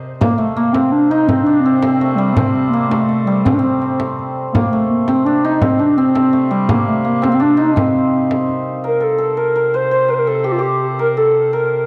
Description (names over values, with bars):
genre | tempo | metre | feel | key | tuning
medieval dance | 111 BPM (dotted quarters) | 6/8 | straight | C dorian | A4 = 440 Hz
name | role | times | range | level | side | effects
hammered dulcimer | second line | 0.0-11.9 s | G3 to Eb5 | -23 LUFS | equal | none
clear viola da gamba | drone | 0.0-11.9 s | C3 | -28 LUFS | equal | none
reedy FM lead | melody | 0.2-11.9 s | G3 to C5 | -17 LUFS | equal | chorus, analog delay
frame drum | percussion | 0.2-8.6 s | none | -23 LUFS | equal | none
room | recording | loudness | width
light reverb | dry, gritty hardware recording, cassette tape | -15 LUFS | mono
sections
0.2-8.8 A section; 8.8-11.9 B section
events
none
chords
none